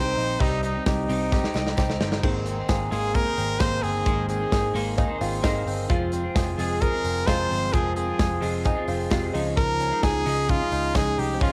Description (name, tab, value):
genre	jangly indie pop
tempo	131 BPM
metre	4/4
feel	straight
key	Ab major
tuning	A4 = 439 Hz
part	bright trumpet	melody	0.0-11.5 s	Eb4 to C5	-29 LUFS	equal	cassette tape
part	bright reed electric piano	accompaniment	0.0-11.5 s	G3 to Bb4	-36 LUFS	equal	none
part	clean electric guitar	accompaniment	0.0-11.5 s	C3 to C5	-35 LUFS	equal	lush chorus, cassette tape
part	direct-recorded clean electric guitar	arpeggios	0.0-11.5 s	Eb3 to Ab4	-33 LUFS	equal	cassette tape
part	vintage muted picked electric bass	bass	0.0-11.5 s	F1 to Db2	-32 LUFS	equal	transformer saturation
part	modern studio drum kit	drums	0.2-11.5 s	crash cymbal, hi-hat, kick drum, snare drum	-29 LUFS	equal	cassette tape
part	tambourine	percussion	0.6-11.3 s	none	-51 LUFS	equal	none
part	open-back banjo	second line	2.2-11.5 s	C4 to F4	-37 LUFS	equal	cassette tape
room	light reverb, small room ambience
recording	home recording on cassette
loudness	-24 LUFS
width	mono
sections	0.0-11.5 A section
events	drum fill 1.3-2.2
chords	0.0 Cm; 2.2 Abadd9; 5.9 Fm; 9.3 Dbadd9